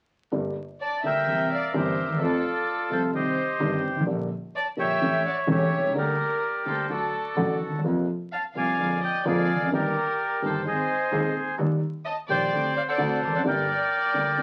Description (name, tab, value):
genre	tango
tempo	128 BPM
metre	4/4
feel	rubato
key	G minor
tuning	A4 = 439 Hz
part	dark grand piano	accompaniment	0.3-14.4 s	Eb1 to A4	-29 LUFS	equal	none
part	clear double bass	bass	0.3-14.4 s	E1 to F2	-38 LUFS	equal	none
part	bandoneon	melody	0.8-14.4 s	F4 to A5	-28 LUFS	equal	none
part	warm studio violin section	second line	0.8-14.4 s	A4 to F5	-34 LUFS	equal	none
room	moderate studio reverb, RT60 0.6 s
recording	very old 78 rpm record, vinyl crackle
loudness	-26 LUFS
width	mono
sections	0.3-14.4 A section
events	none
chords	0.3 Gm; 1.3 C7; 2.2 F; 3.1 Cm; 4.1 Gm/Bb; 5.0 A7; 6.0 Gm/D; 6.9 D; 7.8 Fsus4; 8.8 Bb7/F; 9.7 Eb/G; 10.6 Ab; 11.6 Eb; 12.5 D7sus4; 13.0 D7; 13.4 Gm